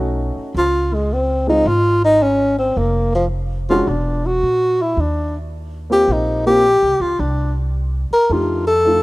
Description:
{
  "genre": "jazz, small-group swing and bop",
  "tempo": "108 BPM",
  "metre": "4/4",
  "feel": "swing 67% on 8ths",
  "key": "unclear",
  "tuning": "A4 = 440 Hz",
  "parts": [
    { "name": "dark baby grand piano", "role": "accompaniment", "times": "0.0-9.0 s", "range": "Ab3 to G4", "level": "-21 LUFS", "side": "equal", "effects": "none" },
    { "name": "upright bass", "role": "bass", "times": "0.0-9.0 s", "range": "E1 to Bb2", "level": "-21 LUFS", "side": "equal", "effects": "none" },
    { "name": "breathy tenor saxophone", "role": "melody", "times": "0.6-9.0 s", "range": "F3 to Bb4", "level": "-16 LUFS", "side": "equal", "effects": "none" }
  ],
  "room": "small room ambience",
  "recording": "rough home demo mix",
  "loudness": "-14 LUFS",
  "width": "side -20 dB against mid",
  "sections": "0.0-9.0 A section",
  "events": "none",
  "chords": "0.0 B9; 0.6 Dbmaj7; 2.8 Fm; 3.9 Esus2; 5.0 Eb69; 7.2 Bbadd9/C (rootless); 8.3 F13",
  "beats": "0.00 | 0.56 1.11 1.66 2.22 | 2.77 3.32 3.88 4.43 | 4.98 5.53 6.09 6.64 | 7.19 7.75 8.30 8.85"
}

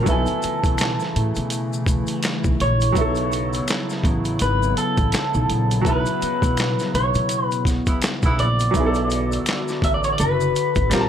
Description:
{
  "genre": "R&B, neo-soul",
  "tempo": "83 BPM",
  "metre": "4/4",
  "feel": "swing 58% on 16ths",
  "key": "B dorian",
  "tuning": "A4 = 440 Hz",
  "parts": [
    { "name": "electric guitar through a small old amp", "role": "melody", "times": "0.0-11.1 s", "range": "A4 to E5", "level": "-24 LUFS", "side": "left 1 dB", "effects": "none" },
    { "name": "bright baby grand piano", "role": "accompaniment", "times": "0.0-11.1 s", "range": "F#3 to A5", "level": "-28 LUFS", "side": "right 1 dB", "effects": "none" },
    { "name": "hollow soft pad", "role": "sustained chords", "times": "0.0-11.1 s", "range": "C#3 to F#4", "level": "-27 LUFS", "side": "equal", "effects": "chorus" },
    { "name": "upright bass", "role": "bass", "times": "0.0-11.1 s", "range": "F#1 to B2", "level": "-23 LUFS", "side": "equal", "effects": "none" },
    { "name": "boom bap sampler-style drum kit", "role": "drums", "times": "0.1-11.1 s", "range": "handclaps, hi-hat, kick drum, snare drum", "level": "-23 LUFS", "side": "equal", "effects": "none" },
    { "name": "maracas and finger snaps", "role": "percussion", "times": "0.1-11.1 s", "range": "none", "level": "-34 LUFS", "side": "left 7 dB", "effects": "none" },
    { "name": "mellow horn section", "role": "stabs", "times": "7.9-8.5 s", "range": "C#3 to E4", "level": "-28 LUFS", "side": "right 3 dB", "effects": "none" }
  ],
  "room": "light reverb, small room ambience",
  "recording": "none",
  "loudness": "-18 LUFS",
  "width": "side -9 dB against mid",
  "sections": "0.0-11.1 A section",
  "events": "band accent 5.8-8.7",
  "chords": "0.1 Amaj7/B; 3.0 F#7sus4; 8.7 Bm7",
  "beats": "| 0.07 0.79 1.51 2.23 | 2.96 3.68 4.40 5.13 | 5.85 6.57 7.29 8.02 | 8.74 9.46 10.19 10.91"
}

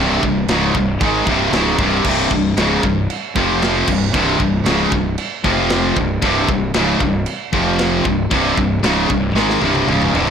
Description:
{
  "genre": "heavy metal",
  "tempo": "115 BPM",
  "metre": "4/4",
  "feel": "straight",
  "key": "unclear",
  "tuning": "A4 = 440 Hz",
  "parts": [
    { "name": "distorted electric guitar", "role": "riff", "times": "0.0-10.3 s", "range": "C2 to Ab3", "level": "-20 LUFS", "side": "right 9 dB", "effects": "overdrive" },
    { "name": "high-gain distorted guitar", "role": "riff", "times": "0.0-10.3 s", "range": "C2 to Ab3", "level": "-20 LUFS", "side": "left 10 dB", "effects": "distortion" },
    { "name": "tight distorted guitar", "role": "riff", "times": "0.0-10.3 s", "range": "C2 to Ab3", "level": "-21 LUFS", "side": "right 1 dB", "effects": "distortion" },
    { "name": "fuzz fingered electric bass", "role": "bass", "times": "0.0-10.3 s", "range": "C1 to Ab1", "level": "-22 LUFS", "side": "equal", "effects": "overdrive" },
    { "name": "tight metal drum kit", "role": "drums", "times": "0.2-10.3 s", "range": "china cymbal, crash cymbal, kick drum, snare drum, toms", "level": "-22 LUFS", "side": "equal", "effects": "none" }
  ],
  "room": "studio reverb",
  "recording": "blown-out, overdriven recording, overdrive",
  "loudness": "-14 LUFS",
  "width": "side -7 dB against mid",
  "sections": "0.0-10.3 A section",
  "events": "drum fill 9.4-10.3",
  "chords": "0.0 Cm; 3.4 F5; 3.9 C5; 5.4 F5; 6.0 C5; 7.5 F5; 8.1 Cm",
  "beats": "0.49 1.01 1.53 | 2.06 2.58 3.10 3.62 | 4.14 4.66 5.18 5.70 | 6.22 6.75 7.27 7.79 | 8.31 8.84 9.36 9.88"
}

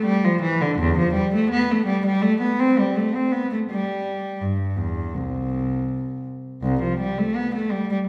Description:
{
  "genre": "classical, baroque-style suite movement for unaccompanied cello",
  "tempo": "82 BPM",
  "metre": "4/4",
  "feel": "rubato",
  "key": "C major",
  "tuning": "A4 = 438 Hz",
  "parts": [
    { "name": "rich cello", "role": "solo", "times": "0.0-8.0 s", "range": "C2 to C4", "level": "-23 LUFS", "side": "equal", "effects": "none" }
  ],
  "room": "wet recital hall reverb, RT60 1.7 s",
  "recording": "heard from further back in the room",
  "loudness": "-23 LUFS",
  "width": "mono",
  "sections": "0.0-8.1 A section",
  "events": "none",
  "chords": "none",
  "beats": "0.05 | 0.77 1.50 2.21 2.93 | 3.67 4.41 5.14 5.88 | 6.63 7.37"
}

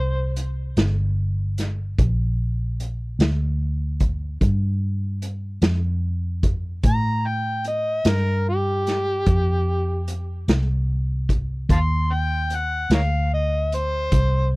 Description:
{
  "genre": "slow blues",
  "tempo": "50 BPM (dotted quarters)",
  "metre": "12/8",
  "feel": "straight",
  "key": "unclear",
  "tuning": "A4 = 440 Hz",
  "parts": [
    { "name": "overdriven harmonica", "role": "melody", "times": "0.0-14.5 s", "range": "G4 to C6", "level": "-25 LUFS", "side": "equal", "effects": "none" },
    { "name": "vintage muted fingered electric bass", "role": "bass", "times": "0.0-14.6 s", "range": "G1 to A2", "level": "-22 LUFS", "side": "equal", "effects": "none" },
    { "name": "vintage drum kit", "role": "drums", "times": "0.4-14.3 s", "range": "hi-hat, kick drum, snare drum", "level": "-21 LUFS", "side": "equal", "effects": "none" }
  ],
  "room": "little or no reverb",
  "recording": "none",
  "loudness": "-20 LUFS",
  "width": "side -24 dB against mid",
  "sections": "0.0-14.6 A section",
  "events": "none",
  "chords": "0.0 Csus2; 4.4 Gsus2; 9.3 Fsus2",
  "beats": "0.77 1.98 3.19 | 4.40 5.62 6.83 8.04 | 9.26 10.47 11.69 12.90 | 14.12"
}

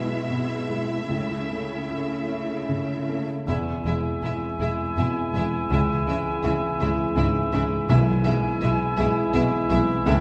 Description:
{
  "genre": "cinematic, emotional film score for orchestra",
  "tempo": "74-84 BPM",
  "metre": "3/4",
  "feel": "rubato",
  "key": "E major",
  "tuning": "A4 = 445 Hz",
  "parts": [
    { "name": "warm symphonic violin section", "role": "melody", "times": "0.0-10.1 s", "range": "E5", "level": "-38 LUFS", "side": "equal", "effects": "none" },
    { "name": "dark symphonic viola section", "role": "accompaniment", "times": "0.0-10.1 s", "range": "G#3 to E4", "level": "-37 LUFS", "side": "equal", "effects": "none" },
    { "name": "felt-muted upright piano", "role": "accompaniment", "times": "0.0-10.2 s", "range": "B1 to E4", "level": "-31 LUFS", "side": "equal", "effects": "none" },
    { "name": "rich symphonic cello section", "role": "bass", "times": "0.0-10.1 s", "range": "E2 to C#3", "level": "-32 LUFS", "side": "equal", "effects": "none" },
    { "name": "bright concert flute", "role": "second line", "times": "3.5-10.2 s", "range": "G#5 to A5", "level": "-37 LUFS", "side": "equal", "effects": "none" },
    { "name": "clear symphonic violin section", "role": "second line", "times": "3.5-10.2 s", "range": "E4", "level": "-38 LUFS", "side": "equal", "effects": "none" },
    { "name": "mellow cor anglais", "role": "second line", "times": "3.5-10.2 s", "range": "E5", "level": "-34 LUFS", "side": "equal", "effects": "none" },
    { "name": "warm clarinet", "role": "second line", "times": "3.5-10.2 s", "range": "E4", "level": "-33 LUFS", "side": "equal", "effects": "none" },
    { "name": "warm French horn section", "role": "sustained chords", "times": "3.5-10.2 s", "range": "E3 to A4", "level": "-34 LUFS", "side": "equal", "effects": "none" },
    { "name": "dark symphonic double bass section", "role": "bass", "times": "3.5-10.1 s", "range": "E1 to C#2", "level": "-31 LUFS", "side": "equal", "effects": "none" },
    { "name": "timpani", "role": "percussion", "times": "7.9-8.9 s", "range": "B2", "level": "-28 LUFS", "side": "equal", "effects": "none" }
  ],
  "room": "wet scoring stage reverb, RT60 1.8 s",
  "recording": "heard from further back in the room",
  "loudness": "-24 LUFS",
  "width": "mono",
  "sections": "0.0-3.5 A section; 3.5-10.2 A section",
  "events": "none",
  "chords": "0.0 E/B; 1.1 A/C#; 3.5 E; 5.7 C#m; 7.9 E/B",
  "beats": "0.30 | 1.10 1.90 2.69 | 3.48 4.24 4.98 | 5.71 6.44 7.17 | 7.90 8.62 9.34 | 10.06"
}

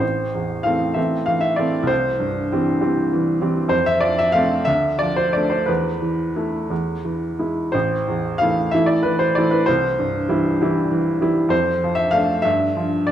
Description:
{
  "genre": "classical, romantic character piece for solo piano",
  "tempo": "57-67 BPM (dotted quarters)",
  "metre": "6/8",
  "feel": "rubato",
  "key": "A minor",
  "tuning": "A4 = 440 Hz",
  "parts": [
    { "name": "clear upright piano", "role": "solo", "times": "0.0-13.1 s", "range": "A1 to F5", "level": "-17 LUFS", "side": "equal", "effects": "none" }
  ],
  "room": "wet recital hall reverb, RT60 1.7 s",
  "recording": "none",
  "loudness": "-17 LUFS",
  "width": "side -10 dB against mid",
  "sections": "0.0-13.1 A section",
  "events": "none",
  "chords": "0.0 Am; 1.9 C; 3.7 F; 4.7 Dm; 5.7 Esus4; 6.7 E; 7.7 Am; 9.7 C; 11.5 Dm7/F; 12.4 G7(no3)",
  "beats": "| 0.02 0.97 | 1.90 2.81 | 3.72 4.67 | 5.69 6.71 | 7.74 8.71 | 9.67 10.59 | 11.51 12.45"
}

